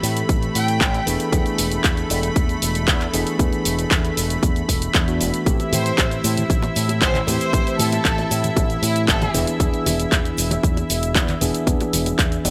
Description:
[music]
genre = nu-disco, nu disco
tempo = 116 BPM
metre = 4/4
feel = straight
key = unclear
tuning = A4 = 440 Hz
[part]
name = mellow tine electric piano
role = accompaniment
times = 0.0-12.5 s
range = E3 to G#4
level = -28 LUFS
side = equal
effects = digital delay
[part]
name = lush unison pad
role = sustained chords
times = 0.0-12.5 s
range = A3 to B5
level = -30 LUFS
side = equal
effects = chorus, sidechain pumping
[part]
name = fingered electric bass with an envelope filter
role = bass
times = 0.0-12.5 s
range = E1 to A2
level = -27 LUFS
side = equal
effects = none
[part]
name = house drum kit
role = drums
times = 0.0-12.5 s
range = handclaps, hi-hat, shaker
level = -26 LUFS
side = equal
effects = none
[part]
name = electronic kick drum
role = drums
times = 0.3-12.3 s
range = none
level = -23 LUFS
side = equal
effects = none
[part]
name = rich chamber violin section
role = melody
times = 0.5-0.9, 5.7-9.4 s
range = E4 to G5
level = -30 LUFS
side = equal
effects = digital delay
[part]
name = cabasa, bongos and congas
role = percussion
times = 5.5-12.5 s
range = none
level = -32 LUFS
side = equal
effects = none
[sound]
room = little or no reverb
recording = none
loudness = -20 LUFS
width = mono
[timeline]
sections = 0.0-12.5 A section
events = none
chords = 0.0 Am7; 1.1 E7; 5.5 Am7; 9.3 E7

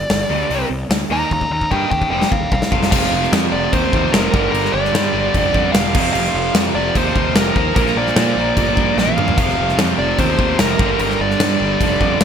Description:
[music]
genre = hard rock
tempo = 149 BPM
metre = 4/4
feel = straight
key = unclear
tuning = A4 = 440 Hz
[part]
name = nasal lead guitar with a parked wah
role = melody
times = 0.0-12.2 s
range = A4 to Bb5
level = -20 LUFS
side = equal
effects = overdrive, ping-pong delay
[part]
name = fuzz picked electric bass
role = bass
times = 0.0-12.2 s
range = E1 to Bb2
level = -23 LUFS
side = equal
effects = overdrive
[part]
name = gated 80s drum kit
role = drums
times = 0.1-12.2 s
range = crash cymbal, hi-hat, kick drum, snare drum, toms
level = -19 LUFS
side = equal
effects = gated reverb
[part]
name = distorted electric guitar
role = riff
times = 0.3-12.2 s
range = F2 to Eb4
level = -23 LUFS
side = right 12 dB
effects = overdrive
[part]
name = tight distorted guitar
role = riff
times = 0.3-12.2 s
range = F2 to Eb4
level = -23 LUFS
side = left 14 dB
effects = distortion
[part]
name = scooped high-gain guitar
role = riff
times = 2.9-12.2 s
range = F2 to Bb3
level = -24 LUFS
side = equal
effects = distortion
[sound]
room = light reverb, studio ambience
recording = bright 1980s-style digital production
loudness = -14 LUFS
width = side -8 dB against mid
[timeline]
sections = 0.0-2.9 A section; 2.9-12.2 B section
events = lead electric guitar solo 0.0-2.9; drum fill 1.3-2.9, 9.0-9.4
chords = 0.0 G5; 0.5 C5; 1.1 Eb; 2.1 F; 4.3 G5; 5.9 F5; 7.8 Bb; 9.4 F5; 10.8 G5

